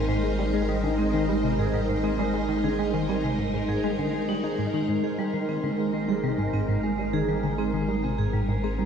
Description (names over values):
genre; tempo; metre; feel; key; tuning
ambient, sequencer-driven space music; 100 BPM; 4/4; straight; Ab major; A4 = 440 Hz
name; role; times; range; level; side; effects
string machine, full ensemble; sustained chords; 0.0-8.9 s; D#4 to C5; -29 LUFS; equal; ensemble chorus
vibraphone with hard mallets; arpeggios; 0.0-8.9 s; G3 to Ab4; -30 LUFS; right 2 dB; auto-pan, low-pass filter, ping-pong delay
round analog bass; bass; 0.0-8.9 s; Ab1; -33 LUFS; equal; none
tight sequenced synth; riff; 0.1-8.8 s; Ab2 to Eb4; -28 LUFS; equal; chorus, ping-pong delay
room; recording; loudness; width
wet lush hall reverb, RT60 3.0 s; dark, warm production; -23 LUFS; side -7 dB against mid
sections
0.0-8.9 A section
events
none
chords
0.0 Abmaj7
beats
| 0.09 0.69 1.29 1.89 | 2.49 3.09 3.69 4.29 | 4.89 5.49 6.09 6.69 | 7.29 7.89 8.49